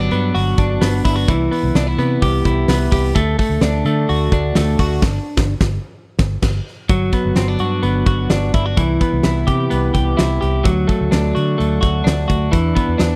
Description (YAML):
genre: jangly indie pop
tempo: 128 BPM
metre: 4/4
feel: straight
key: G major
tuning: A4 = 440 Hz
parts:
  - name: twelve-string electric guitar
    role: arpeggios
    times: 0.0-13.2 s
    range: E3 to G4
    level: -21 LUFS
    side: equal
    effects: tape echo
  - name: vintage muted fingered electric bass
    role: bass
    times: 0.0-13.2 s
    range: G1 to D3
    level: -21 LUFS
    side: equal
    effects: none
  - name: big rock drum kit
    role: drums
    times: 0.1-13.1 s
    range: crash cymbal, hi-hat, kick drum, snare drum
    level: -21 LUFS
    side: equal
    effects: none
room: little or no reverb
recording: dry, close 1970s-style studio recording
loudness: -17 LUFS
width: mono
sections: 0.0-6.9 A section; 6.9-13.2 B section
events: band accent 5.0-6.9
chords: 0.0 Gmaj7; 1.3 Cmaj7; 3.1 D; 5.0 N.C.; 6.9 Gmaj7; 8.8 Cmaj7; 10.7 D; 12.5 E7(no3)